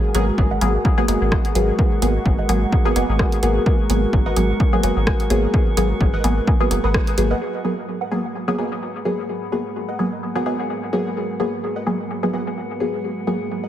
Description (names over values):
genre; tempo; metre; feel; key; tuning
dub techno; 128 BPM; 4/4; swing 55% on 16ths; G# minor; A4 = 440 Hz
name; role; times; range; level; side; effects
dark analog pad; sustained chords; 0.0-13.7 s; G#3 to A#4; -28 LUFS; equal; chorus, sidechain pumping
filtered dub chord stab; stabs; 0.0-13.4 s; F#3 to G#4; -22 LUFS; equal; chorus, phaser, dub echo
drifting glass-harmonics texture; texture; 1.4-13.7 s; B3 to F#4; -34 LUFS; right 3 dB; chorus, built-in reverb, sidechain pumping
soft dub sub bass; bass; 0.1-7.3 s; F#1 to G#1; -21 LUFS; equal; sidechain pumping
punchy analog drum machine; drums; 0.1-7.3 s; hi-hat, rim click; -26 LUFS; equal; low-pass filter on cymbals, low-pass filter on hats, low-pass filter on snare
electronic kick drum; drums; 0.4-7.0 s; none; -19 LUFS; equal; none
filtered dub chord stab; riff; 0.5-13.7 s; A#4 to F#5; -33 LUFS; right 2 dB; phaser, analog chorus, sidechain pumping, dub echo
room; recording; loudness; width
light reverb; none; -18 LUFS; side -11 dB against mid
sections
0.0-7.4 A section; 7.4-13.7 B section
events
band accent 6.9; filter sweep on analog synth pad 7.4-13.7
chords
0.0 G#m9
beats
0.38 0.85 1.32 | 1.79 2.26 2.73 3.19 | 3.66 4.13 4.60 5.07 | 5.54 6.01 6.47 6.94 | 7.41 7.88 8.35 8.82 | 9.29 9.76 10.22 10.69 | 11.16 11.63 12.10 12.57 | 13.04 13.51